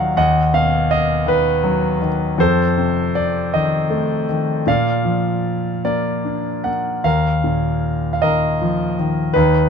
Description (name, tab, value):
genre	classical, lyrical solo piano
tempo	50-54 BPM (dotted quarters)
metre	6/8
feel	rubato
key	Eb harmonic minor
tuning	A4 = 439 Hz
part	clear grand piano	solo	0.0-9.7 s	Eb2 to Gb5	-16 LUFS	equal	none
room	light reverb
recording	dark, warm production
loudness	-16 LUFS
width	side -6 dB against mid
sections	0.0-9.7 A section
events	none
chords	0.2 B/D#; 2.4 F7; 4.7 Bb; 7.0 Ebsus2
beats	| 0.17 1.27 | 2.39 3.53 | 4.67 5.84 | 7.04 8.22 | 9.36